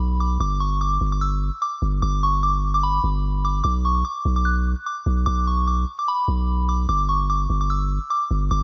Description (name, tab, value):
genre	hip hop, trap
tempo	148 BPM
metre	4/4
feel	half-time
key	unclear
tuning	A4 = 440 Hz
part	soft synth bell	melody	0.0-8.6 s	B5 to F#6	-26 LUFS	equal	chorus, low-pass filter
part	long sustained 808-style bass	bass	0.0-8.6 s	G1 to B1	-24 LUFS	equal	none
room	moderate plate reverb, RT60 3.1 s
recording	dreamy mix soaked in reverb, vinyl crackle, nothing above 7.4 kHz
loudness	-22 LUFS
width	mono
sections	0.0-8.6 A section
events	none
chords	0.4 G5; 3.6 B5; 6.9 G5